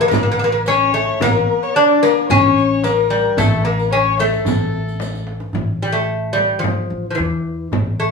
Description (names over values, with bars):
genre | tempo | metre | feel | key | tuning
Persian modal ensemble | 110 BPM | 4/4 | straight | A dastgah homayun | A4 = 438 Hz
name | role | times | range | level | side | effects
lute | melody | 0.0-8.1 s | E3 to D4 | -16 LUFS | left 1 dB | none
warm kamancheh | second line | 0.0-5.3 s | A4 to D5 | -22 LUFS | left 8 dB | none
upright bass | bass | 0.1-8.1 s | A1 to E2 | -22 LUFS | equal | none
frame drum | percussion | 0.1-7.9 s | none | -25 LUFS | left 2 dB | none
riq | percussion | 0.1-5.2 s | none | -29 LUFS | right 8 dB | none
tombak | percussion | 0.1-7.8 s | none | -25 LUFS | right 3 dB | none
room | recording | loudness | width
wet studio reverb, RT60 0.8 s | band playing live in one room, studio reverb | -14 LUFS | side -4 dB against mid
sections
0.0-5.5 A section; 5.5-8.1 B section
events
drum fill 5.0-5.5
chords
none